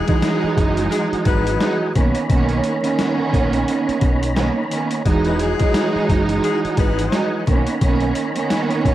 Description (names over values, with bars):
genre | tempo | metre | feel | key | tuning
hip hop, boom-bap hip-hop | 87 BPM | 4/4 | swing 58% on 16ths | B major | A4 = 439 Hz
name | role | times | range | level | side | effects
dark studio string section | accompaniment | 0.0-8.9 s | D#3 to D#4 | -19 LUFS | right 4 dB | cassette tape
mellow tonewheel organ | sustained chords | 0.0-8.9 s | E3 to B5 | -27 LUFS | left 2 dB | chorus vibrato, fast rotary speaker, cassette tape
edgy saxophone section | stabs | 0.0-7.3 s | G#3 to B4 | -27 LUFS | left 8 dB | cassette tape, tape echo
boom bap sampler-style drum kit | drums | 0.1-8.9 s | hi-hat, kick drum, snare drum | -20 LUFS | left 1 dB | overdrive, cassette tape
deep dub fingered electric bass | bass | 0.4-8.9 s | E1 to B1 | -23 LUFS | equal | transformer saturation
room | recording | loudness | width
little or no reverb | home recording on cassette, vinyl crackle | -16 LUFS | side -13 dB against mid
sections
0.0-8.9 A section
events
none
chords
0.0 Emaj9; 2.0 Bmaj9; 5.1 Emaj9; 7.5 Bmaj9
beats
0.23 0.92 1.61 | 2.30 2.99 3.68 4.37 | 5.05 5.75 6.43 7.12 | 7.81 8.50